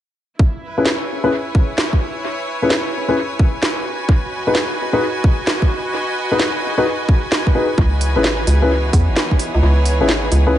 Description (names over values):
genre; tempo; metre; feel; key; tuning
UK garage, two-step garage; 130 BPM; 4/4; swing 66% on 16ths; C# minor; A4 = 440 Hz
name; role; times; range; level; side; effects
electronic kick drum; drums; 0.4-9.4 s; none; -14 LUFS; equal; none
clear studio string section; texture; 0.4-10.6 s; E3 to G#5; -24 LUFS; right 1 dB; sidechain pumping
dark concert grand piano; stabs; 0.8-10.5 s; C#4 to B4; -19 LUFS; left 2 dB; low-pass filter, analog delay
garage drum kit; drums; 0.9-10.4 s; hi-hat, snare drum; -21 LUFS; right 1 dB; dub echo
warm chamber violin section; sustained chords; 7.8-10.6 s; B3 to G#4; -26 LUFS; equal; sidechain pumping
hollow knocking FM bass; bass; 7.8-10.6 s; G#1 to E2; -15 LUFS; equal; tube saturation
room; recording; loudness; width
light reverb, small room ambience; echo-heavy mix, nothing above 10.5 kHz; -15 LUFS; side -12 dB against mid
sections
0.4-10.6 A section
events
none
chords
0.4 C#m7; 3.9 B6; 7.8 C#m7